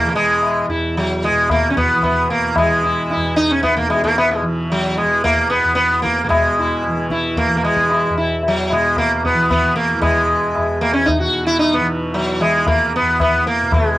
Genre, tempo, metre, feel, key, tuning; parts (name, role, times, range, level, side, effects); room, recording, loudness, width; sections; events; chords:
indian classical, Hindustani; 113 BPM; 7/4; straight; E raga yaman; A4 = 440 Hz
sitar; melody; 0.0-14.0 s; F#3 to F#4; -16 LUFS; equal; cassette tape
tanpura; drone; 0.0-14.0 s; E2 to E3; -23 LUFS; equal; cassette tape
tabla; percussion; 0.4-13.9 s; -21 LUFS; left 2 dB
light reverb; home recording on cassette; -14 LUFS; side -16 dB against mid
0.0-14.0 A section